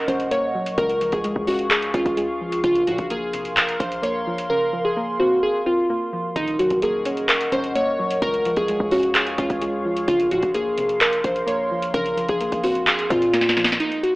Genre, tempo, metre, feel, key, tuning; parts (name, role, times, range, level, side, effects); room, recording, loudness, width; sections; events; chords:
hip hop, trap; 129 BPM; 4/4; half-time; Bb minor; A4 = 439 Hz
glassy digital keys; melody; 0.0-14.2 s; Eb4 to Db5; -21 LUFS; equal; chorus, low-pass filter
soft round pluck; accompaniment; 0.0-13.8 s; C3 to Db4; -30 LUFS; equal; chorus, low-pass filter
dark analog pad; sustained chords; 0.0-14.2 s; Bb3 to Db6; -28 LUFS; equal; chorus, phaser
hard-hitting 808-style bass; bass; 0.0-13.8 s; Eb1 to Bb2; -31 LUFS; equal
booming analog drum machine; drums; 0.1-14.1 s; handclaps, hi-hat, kick drum, snare drum; -23 LUFS; equal
light reverb; dry, gritty hardware recording, AM radio sound; -19 LUFS; side -21 dB against mid
0.0-13.8 A section
drums muted 4.5-6.4; drum fill 13.3-13.8
0.0 Ebm7; 0.8 Db; 2.6 Bbmadd9; 6.4 Ebm7; 8.2 Db; 10.1 Bbmadd9